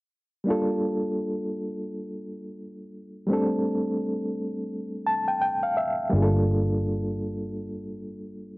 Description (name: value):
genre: R&B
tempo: 85 BPM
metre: 4/4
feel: swing 61% on 16ths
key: G minor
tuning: A4 = 439 Hz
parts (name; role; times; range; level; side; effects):
- bright reed electric piano; accompaniment; 0.4-8.6 s; G3 to A5; -26 LUFS; equal; fast tremolo
- vintage muted fingered electric bass; bass; 6.1-8.6 s; G1; -25 LUFS; equal; none
room: light reverb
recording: home recording on cassette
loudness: -24 LUFS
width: side -22 dB against mid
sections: 0.5-8.6 A section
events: reed electric piano fill 4.7-6.1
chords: 0.5 Gm9; 3.3 D7sus4; 6.1 Gm9